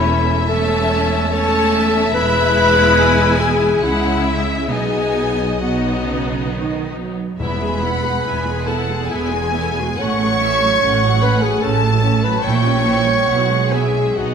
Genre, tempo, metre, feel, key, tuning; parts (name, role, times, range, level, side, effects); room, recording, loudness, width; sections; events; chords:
classical; 65-75 BPM; 3/4; rubato; E major; A4 = 441 Hz
clear symphonic violin section; melody; 0.0-14.3 s; C#5 to A5; -25 LUFS; left 4 dB
dark clarinet; second line; 0.0-14.3 s; E4 to C#5; -19 LUFS; left 1 dB
warm symphonic violin section; second line; 0.0-14.3 s; E5 to C#6; -22 LUFS; left 3 dB
bright symphonic viola section; accompaniment; 0.0-14.3 s; E3 to G#4; -22 LUFS; equal
clear studio double bass section; bass; 0.0-14.3 s; E1 to C#2; -23 LUFS; right 4 dB
warm symphonic cello section; bass; 0.0-14.3 s; E2 to F#3; -22 LUFS; right 4 dB
timpani; percussion; 7.4-8.6 s; E2; -30 LUFS; left 2 dB
wet concert hall reverb, RT60 2.4 s; -14 LUFS; side -7 dB against mid
0.0-14.3 A section
0.0 A/E; 2.1 E; 3.8 C#m; 4.7 B; 7.4 E; 10.0 F#m/A; 12.4 A#dim7; 13.3 E/B